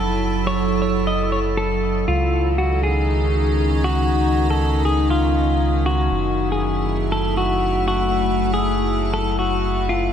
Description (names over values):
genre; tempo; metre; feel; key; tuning
IDM; 119 BPM; 4/4; swing 62% on 16ths; F# dorian; A4 = 439 Hz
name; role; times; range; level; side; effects
clean electric guitar; melody; 0.0-10.1 s; E#4 to D#5; -22 LUFS; left 1 dB; spring reverb, shimmer reverb, dub echo
icy glass pad; sustained chords; 0.0-10.1 s; D#3 to A4; -22 LUFS; equal; chorus, built-in reverb, shimmer reverb
round analog bass; bass; 0.0-10.1 s; F#1 to C#2; -22 LUFS; equal; none
room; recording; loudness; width
moderate plate reverb, RT60 2.8 s; echo-heavy mix; -17 LUFS; side -8 dB against mid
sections
0.0-10.1 A section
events
none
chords
0.0 F#m7; 2.1 C#add9; 6.1 F#m7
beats
| 0.06 0.57 1.07 1.58 | 2.08 2.58 3.09 3.59 | 4.10 4.60 5.11 5.61 | 6.12 6.62 7.12 7.63 | 8.13 8.64 9.14 9.64